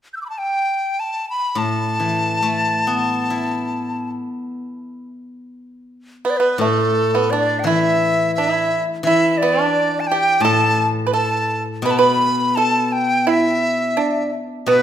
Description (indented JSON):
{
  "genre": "chinese traditional, Chinese chamber ensemble",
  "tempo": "66-87 BPM",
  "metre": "2/4",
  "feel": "rubato",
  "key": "A shang mode",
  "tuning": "A4 = 441 Hz",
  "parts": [
    { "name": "breathy dizi", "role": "melody", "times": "0.1-14.8 s", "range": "A4 to G6", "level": "-19 LUFS", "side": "equal", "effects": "none" },
    { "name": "steel-string zither", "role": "accompaniment", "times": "1.6-14.8 s", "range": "A2 to E4", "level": "-23 LUFS", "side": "left 2 dB", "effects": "none" },
    { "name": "pipa", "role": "second line", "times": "6.2-14.8 s", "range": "A3 to B4", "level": "-20 LUFS", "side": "right 4 dB", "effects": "none" }
  ],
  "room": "moderate recital hall reverb, RT60 1.6 s",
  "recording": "minimal, uncompressed stereo recording",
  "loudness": "-16 LUFS",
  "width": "side -10 dB against mid",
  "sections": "0.0-6.3 A section; 6.3-14.8 B section",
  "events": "none",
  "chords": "none"
}